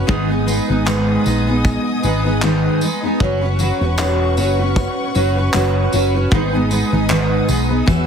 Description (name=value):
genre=acoustic pop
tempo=77 BPM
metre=4/4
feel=swing 55% on 16ths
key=unclear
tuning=A4 = 441 Hz
part: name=picked steel-string acoustic guitar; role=accompaniment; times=0.0-8.1 s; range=G#2 to B4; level=-17 LUFS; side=equal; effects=double-tracked left and right
part: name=warm studio string section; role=sustained chords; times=0.0-8.1 s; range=B4 to E6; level=-26 LUFS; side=left 2 dB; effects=none
part: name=hollow-body short-scale fingered electric bass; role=bass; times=0.0-8.1 s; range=E1 to B1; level=-19 LUFS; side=equal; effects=none
part: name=loose indie drum kit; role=drums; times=0.1-8.1 s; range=handclaps, kick drum, tambourine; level=-22 LUFS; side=equal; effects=none
part: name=tambourine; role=percussion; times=0.5-8.1 s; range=none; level=-35 LUFS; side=left 6 dB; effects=none
room=light reverb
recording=heavily compressed radio sound, multiband compression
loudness=-14 LUFS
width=side -7 dB against mid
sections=0.0-8.1 A section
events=none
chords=0.1 G#m; 3.2 F#sus4; 6.3 G#m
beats=| 0.09 0.87 1.65 2.42 | 3.20 3.98 4.76 5.54 | 6.32 7.10 7.88